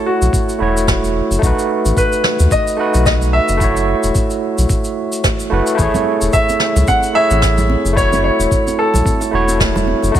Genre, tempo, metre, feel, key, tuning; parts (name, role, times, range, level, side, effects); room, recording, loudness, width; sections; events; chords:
sunset chillout; 110 BPM; 4/4; swing 57% on 16ths; F# dorian; A4 = 439 Hz
clear baby grand piano; melody; 0.0-9.8 s; F#4 to F#5; -18 LUFS; left 1 dB; digital delay
overdriven tine electric piano; accompaniment; 0.0-10.2 s; A3 to C#5; -17 LUFS; right 2 dB; auto-pan, low-pass filter, digital delay
round analog bass; bass; 0.2-10.2 s; E1 to D#2; -16 LUFS; equal; tube saturation
shaker and snare drum; drums; 0.2-10.2 s; -22 LUFS; right 1 dB
electronic kick drum; drums; 0.3-10.2 s; -18 LUFS; equal
congas and bongos; percussion; 5.9-10.1 s; -25 LUFS; equal
light reverb, studio reverb; -12 LUFS; side -10 dB against mid
0.0-10.2 A section
filter sweep on tine electric piano 0.0-10.2
0.0 F#m7; 1.4 B7; 3.6 F#m7; 5.8 Amaj7; 8.0 F#m7